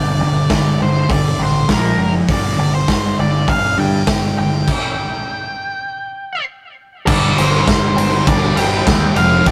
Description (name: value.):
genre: garage rock duo or trio.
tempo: 100 BPM.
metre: 4/4.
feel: straight.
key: G minor.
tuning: A4 = 440 Hz.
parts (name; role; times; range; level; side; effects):
octave-fuzz lead guitar; melody; 0.0-9.5 s; Bb4 to G5; -23 LUFS; equal; distortion, tape echo.
fuzz guitar; riff; 0.0-9.5 s; F2 to Bb3; -20 LUFS; equal; distortion.
growling picked electric bass; bass; 0.0-9.5 s; F1 to G2; -23 LUFS; equal; overdrive.
raw garage drum kit; drums; 0.5-9.5 s; crash cymbal, hi-hat, kick drum, ride cymbal, snare drum; -19 LUFS; equal; none.
room: light reverb.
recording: rough rehearsal-room recording, tube saturation.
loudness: -16 LUFS.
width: mono.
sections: 0.0-7.1 A section; 7.1-9.5 B section.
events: stop 4.7-7.1.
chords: 0.0 G5; 1.7 Bb5; 2.3 G5; 5.9 N.C.; 7.1 G5.